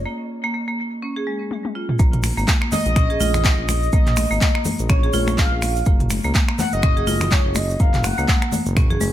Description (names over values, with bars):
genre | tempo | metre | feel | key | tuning
afro house | 124 BPM | 4/4 | swing 57% on 16ths | Bb minor | A4 = 440 Hz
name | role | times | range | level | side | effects
expressive synth lead | melody | 0.0-8.5 s | Db5 to Gb5 | -26 LUFS | left 1 dB | wide subtle chorus, tape echo
smooth synth bass | bass | 0.0-9.1 s | Gb1 to Db2 | -23 LUFS | equal | sidechain pumping
marimba with hard mallets | arpeggios | 0.1-9.1 s | Ab3 to Ab4 | -26 LUFS | right 1 dB | sidechain pumping, tape echo
deep house drum kit | drums | 1.5-9.1 s | finger snaps, handclaps, hi-hat, toms | -24 LUFS | equal | low-pass filter on snare, low-pass filter on toms, low-pass filter on hats
electronic kick drum | drums | 2.0-8.9 s | none | -18 LUFS | equal | none
egg shaker | percussion | 2.0-9.1 s | none | -33 LUFS | right 6 dB | none
congas | percussion | 2.2-9.1 s | none | -26 LUFS | left 4 dB | none
room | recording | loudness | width
small room ambience | none | -17 LUFS | side -12 dB against mid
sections
0.0-2.0 A section; 2.0-9.1 B section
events
break 0.1-2.0; drum fill 1.5-2.0; drop 2.0-9.1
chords
0.0 Gbsus2 (rootless); 5.9 Gb5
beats
| 0.06 0.54 1.02 1.51 | 1.99 2.48 2.96 3.44 | 3.93 4.41 4.90 5.38 | 5.86 6.35 6.83 7.32 | 7.80 8.28 8.77